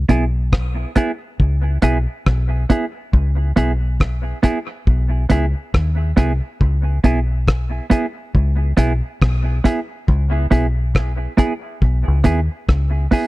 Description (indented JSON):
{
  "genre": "dub reggae",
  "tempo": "69 BPM",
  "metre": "4/4",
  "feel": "swing 60% on 16ths",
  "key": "C# minor",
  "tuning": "A4 = 439 Hz",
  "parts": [
    { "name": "deep dub fingered electric bass", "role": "bass", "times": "0.0-13.1 s", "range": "B1 to D#2", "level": "-17 LUFS", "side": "equal", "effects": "none" },
    { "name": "clean electric guitar", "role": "accompaniment", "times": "0.1-13.3 s", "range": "B3 to G#4", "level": "-20 LUFS", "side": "right 3 dB", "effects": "dub echo" },
    { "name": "cloth-damped thuddy drum kit", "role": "drums", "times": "0.1-13.3 s", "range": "hi-hat, kick drum, rim click", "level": "-16 LUFS", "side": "equal", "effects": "none" }
  ],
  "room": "small room ambience",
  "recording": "dry, close 1970s-style studio recording",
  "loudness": "-16 LUFS",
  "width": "side -18 dB against mid",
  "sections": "0.0-13.3 A section",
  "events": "none",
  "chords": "0.0 C#m7"
}